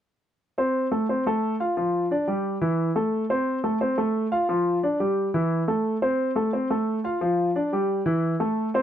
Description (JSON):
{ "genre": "jazz", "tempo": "176 BPM", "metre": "4/4", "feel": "straight", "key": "unclear", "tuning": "A4 = 438 Hz", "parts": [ { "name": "warm grand piano", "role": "solo", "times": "0.6-8.8 s", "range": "E3 to F5", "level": "-22 LUFS", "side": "equal", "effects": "none" } ], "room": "little or no reverb", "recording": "dry, close 1970s-style studio recording", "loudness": "-22 LUFS", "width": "side -10 dB against mid", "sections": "0.4-8.8 A section", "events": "none", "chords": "0.4 Am; 1.8 G5; 2.4 Emadd11; 3.1 Am; 4.5 G5; 5.2 Emadd11; 5.8 Am; 7.2 G5; 7.9 Emadd11" }